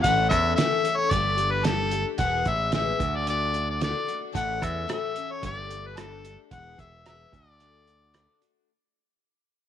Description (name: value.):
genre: folk rock and heartland rock.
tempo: 111 BPM.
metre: 4/4.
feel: straight.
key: A major.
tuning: A4 = 440 Hz.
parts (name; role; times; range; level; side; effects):
mellow harmonica; melody; 0.0-8.4 s; A4 to F#5; -26 LUFS; left 1 dB; none.
picked twelve-string acoustic guitar; accompaniment; 0.0-8.7 s; E2 to A4; -32 LUFS; left 12 dB; analog chorus.
modern bright picked electric bass; bass; 0.0-8.3 s; E1 to E2; -30 LUFS; right 2 dB; none.
cloth-damped thuddy drum kit; drums; 0.0-8.5 s; hi-hat, kick drum, rim click, snare drum; -29 LUFS; right 3 dB; none.
room: light reverb, small room ambience.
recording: 1960s-style stereo.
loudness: -23 LUFS.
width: side -10 dB against mid.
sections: 0.1-8.7 A section.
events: fade-out 0.1-8.7.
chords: 0.1 A; 1.1 Gsus2; 2.2 E; 3.0 D; 4.3 A; 5.4 Gsus2; 6.5 E; 7.3 D.